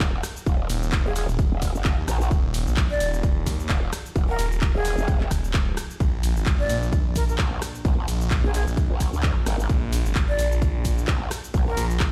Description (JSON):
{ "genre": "bass house", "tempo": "130 BPM", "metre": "4/4", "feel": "swing 57% on 16ths", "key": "Eb harmonic minor", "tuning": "A4 = 440 Hz", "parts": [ { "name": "dark analog pad", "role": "sustained chords", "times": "0.0-12.1 s", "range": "Bb3 to D5", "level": "-46 LUFS", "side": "equal", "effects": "none" }, { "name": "growl bass", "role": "bass", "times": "0.0-11.8 s", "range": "Eb1 to D2", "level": "-28 LUFS", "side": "equal", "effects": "chorus, tube saturation, sidechain pumping" }, { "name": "electronic kick drum", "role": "drums", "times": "0.0-12.1 s", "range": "none", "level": "-25 LUFS", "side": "equal", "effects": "none" }, { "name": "house drum kit", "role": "drums", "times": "0.0-12.1 s", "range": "cabasa, handclaps, hi-hat, ride cymbal, rim click", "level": "-34 LUFS", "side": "equal", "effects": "none" }, { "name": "phased detuned saw bass", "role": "bass", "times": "0.7-12.1 s", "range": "Eb1 to Eb2", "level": "-28 LUFS", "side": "equal", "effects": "phaser, tube saturation, sidechain pumping" }, { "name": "breathy jazz flute", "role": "melody", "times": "1.1-11.8 s", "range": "Ab4 to D5", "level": "-32 LUFS", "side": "equal", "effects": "dub echo" } ], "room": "digital ambience", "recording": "played on a big sound system in a bare room, stone room reverb", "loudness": "-23 LUFS", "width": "mono", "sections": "0.0-12.1 A section", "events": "none", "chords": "0.0 Ebmadd9; 6.0 Bb" }